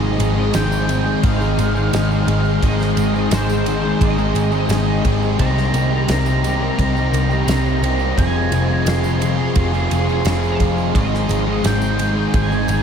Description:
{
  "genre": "rock, shoegaze and dream pop",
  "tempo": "86 BPM",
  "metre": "4/4",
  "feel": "straight",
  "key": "unclear",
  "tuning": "A4 = 440 Hz",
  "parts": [
    { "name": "octave-fuzz lead guitar", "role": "melody", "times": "0.0-12.8 s", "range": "C5 to C6", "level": "-26 LUFS", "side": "equal", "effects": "distortion, tape echo" },
    { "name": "phased string machine", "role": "sustained chords", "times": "0.0-12.8 s", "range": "Ab4 to C6", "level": "-27 LUFS", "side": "right 1 dB", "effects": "ensemble chorus, phaser" },
    { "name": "biting overdriven guitar", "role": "riff", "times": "0.0-12.8 s", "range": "Ab2 to Ab4", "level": "-23 LUFS", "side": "right 7 dB", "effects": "reverse reverb" },
    { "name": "thick fuzz guitar", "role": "riff", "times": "0.0-12.8 s", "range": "F2 to C4", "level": "-21 LUFS", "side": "left 6 dB", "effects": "distortion, wide subtle chorus" },
    { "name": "vintage muted picked electric bass", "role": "bass", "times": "0.0-12.8 s", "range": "F1 to C2", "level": "-20 LUFS", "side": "equal", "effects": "none" },
    { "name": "loose indie drum kit", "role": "drums", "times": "0.2-12.8 s", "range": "kick drum, ride cymbal, snare drum", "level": "-24 LUFS", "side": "right 1 dB", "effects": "none" },
    { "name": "tambourine", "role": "percussion", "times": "0.2-12.8 s", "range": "none", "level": "-40 LUFS", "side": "right 5 dB", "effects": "none" }
  ],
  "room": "wet huge ambient reverb, RT60 8.4 s",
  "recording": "dreamy mix soaked in reverb",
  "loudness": "-15 LUFS",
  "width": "side -7 dB against mid",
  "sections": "0.0-12.8 A section",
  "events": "none",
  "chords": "0.0 Abmaj7; 5.4 Cm7; 8.2 Fm7; 10.9 Abmaj7"
}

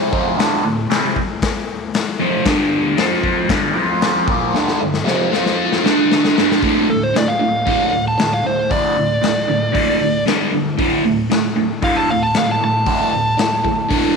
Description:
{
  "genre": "garage rock duo or trio",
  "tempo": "115 BPM",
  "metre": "4/4",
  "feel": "straight",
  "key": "unclear",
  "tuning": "A4 = 444 Hz",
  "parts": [
    { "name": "cranked stack guitar", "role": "riff", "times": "0.0-14.2 s", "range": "D2 to F4", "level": "-17 LUFS", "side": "right 1 dB", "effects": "overdrive, phaser" },
    { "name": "raw garage drum kit", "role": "drums", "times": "0.1-14.0 s", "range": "hi-hat, kick drum, snare drum", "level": "-20 LUFS", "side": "left 4 dB", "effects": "none" },
    { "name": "fuzz lead guitar", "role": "melody", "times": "6.9-14.1 s", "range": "A4 to A5", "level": "-18 LUFS", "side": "right 1 dB", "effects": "distortion" }
  ],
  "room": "moderate echo chamber reverb, RT60 1.8 s, small room ambience",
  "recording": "1960s-style stereo",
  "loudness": "-14 LUFS",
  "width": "side -5 dB against mid",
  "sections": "0.0-6.6 A section; 6.6-14.2 B section",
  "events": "drum fill 4.5-6.6",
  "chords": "0.1 D5; 2.5 G5; 3.0 F5; 3.5 G5; 3.8 F5; 4.3 G5; 5.3 F5; 5.8 D5; 6.4 G5; 6.6 D5; 10.3 G5; 10.8 D5"
}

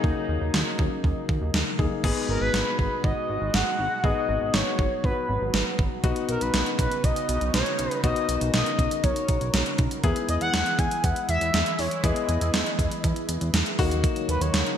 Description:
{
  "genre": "synth-pop",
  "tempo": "120 BPM",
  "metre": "4/4",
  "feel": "straight",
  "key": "G# minor",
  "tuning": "A4 = 440 Hz",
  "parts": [
    { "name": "clear grand piano", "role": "accompaniment", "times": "0.0-14.8 s", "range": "A#3 to G#4", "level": "-31 LUFS", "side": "left 6 dB", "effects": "none" },
    { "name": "sweeping resonant pad", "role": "sustained chords", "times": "0.0-14.8 s", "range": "B2 to A#4", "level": "-33 LUFS", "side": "equal", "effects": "chorus" },
    { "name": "chorused synth bass", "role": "bass", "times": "0.0-14.6 s", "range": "G#1 to E2", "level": "-28 LUFS", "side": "right 1 dB", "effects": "none" },
    { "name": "gated 80s digital drum machine", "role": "drums", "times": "0.0-14.8 s", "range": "crash cymbal, hi-hat, kick drum, snare drum", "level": "-26 LUFS", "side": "right 1 dB", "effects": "gated reverb, gated reverb snare, overdrive" },
    { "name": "expressive portamento lead", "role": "melody", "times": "2.3-14.8 s", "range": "A#4 to G#5", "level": "-28 LUFS", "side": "equal", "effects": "chorus, ping-pong delay" }
  ],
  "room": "moderate plate reverb, RT60 2.0 s",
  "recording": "bright 1980s-style digital production",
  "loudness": "-22 LUFS",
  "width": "side -9 dB against mid",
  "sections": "0.0-2.0 A section; 2.0-14.8 B section",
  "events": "none",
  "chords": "0.0 D#m7; 2.0 G#m7; 6.0 Badd9; 10.0 Emaj7; 13.8 D#m7"
}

